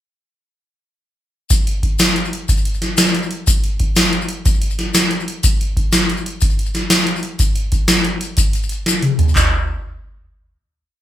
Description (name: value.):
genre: highlife.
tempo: 122 BPM (dotted quarters).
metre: 12/8.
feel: straight.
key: none.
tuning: none.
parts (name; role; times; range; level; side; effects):
booming analog drum machine; drums; 1.5-9.4 s; handclaps, hi-hat, kick drum, snare drum, toms; -15 LUFS; equal; none.
maracas; percussion; 1.5-9.5 s; none; -23 LUFS; left 5 dB; none.
room: light reverb.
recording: band playing live in one room.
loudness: -14 LUFS.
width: side -12 dB against mid.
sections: 1.5-9.4 groove; 9.4-11.0 final hit.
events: drum fill 8.9-9.4.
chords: none.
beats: | 1.51 2.00 2.49 2.98 | 3.47 3.96 4.46 4.95 | 5.44 5.93 6.42 6.91 | 7.41 7.89 8.38 8.88 | 9.36.